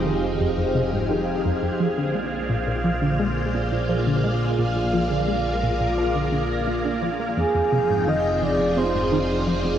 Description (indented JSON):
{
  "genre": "ambient, sequencer-driven space music",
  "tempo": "86 BPM",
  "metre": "4/4",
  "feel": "straight",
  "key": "unclear",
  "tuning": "A4 = 439 Hz",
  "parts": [
    { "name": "phased string machine", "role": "sustained chords", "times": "0.0-9.8 s", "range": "F3 to G5", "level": "-25 LUFS", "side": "equal", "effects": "ensemble chorus, phaser" },
    { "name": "tight sequenced synth", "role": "riff", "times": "0.0-9.7 s", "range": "F2 to Bb3", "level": "-26 LUFS", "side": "equal", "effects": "chorus, phaser, analog delay" },
    { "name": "fat analog bass", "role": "bass", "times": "0.0-9.8 s", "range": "F1 to Bb1", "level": "-28 LUFS", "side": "equal", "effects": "none" },
    { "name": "wind-like tuned noise texture", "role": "texture", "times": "0.0-9.8 s", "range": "F5", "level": "-31 LUFS", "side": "right 3 dB", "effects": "built-in reverb" },
    { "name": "breathy flute-like synth lead", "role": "melody", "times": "7.4-9.8 s", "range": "Ab4 to Eb5", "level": "-22 LUFS", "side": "right 1 dB", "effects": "lush chorus, analog delay" }
  ],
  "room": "wet huge ambient reverb, RT60 7.7 s",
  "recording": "worn, warbling old tape, cassette tape, warbly pitch drift",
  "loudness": "-20 LUFS",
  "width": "side -10 dB against mid",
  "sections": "0.0-9.8 A section",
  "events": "filter sweep on synth arpeggio sound 0.0-9.8",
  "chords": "0.0 Fm7; 1.8 Bb7; 7.4 Fm7"
}